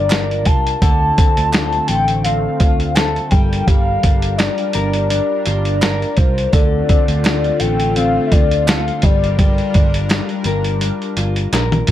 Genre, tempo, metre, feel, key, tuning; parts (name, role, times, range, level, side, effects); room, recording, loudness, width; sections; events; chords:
indie pop, bedroom pop; 84 BPM; 4/4; swing 55% on 16ths; A4 = 440 Hz
warbly nostalgic lead; melody; 0.0-10.5 s; C5 to A5; -20 LUFS; left 3 dB; analog chorus
nylon-string guitar; accompaniment; 0.0-11.9 s; D3 to Bb4; -22 LUFS; left 3 dB; wide subtle chorus, vibrato effect
lush unison pad; sustained chords; 0.0-11.9 s; D3 to Bb4; -26 LUFS; right 1 dB; chorus, phaser
vintage muted fingered electric bass; bass; 0.0-11.9 s; G1 to D2; -20 LUFS; right 1 dB
lo-fi sampler-style drum kit; drums; 0.1-11.9 s; hi-hat, kick drum, snare drum, toms; -16 LUFS; equal
group handclap; percussion; 0.1-11.7 s; -31 LUFS; right 4 dB
little or no reverb; dry, gritty hardware recording; -13 LUFS; side -12 dB against mid
0.0-11.9 A section
drum fill 11.5-11.9
0.0 Gm7; 0.8 Dm7; 3.3 Gm7; 6.5 Dm7; 9.0 Gm7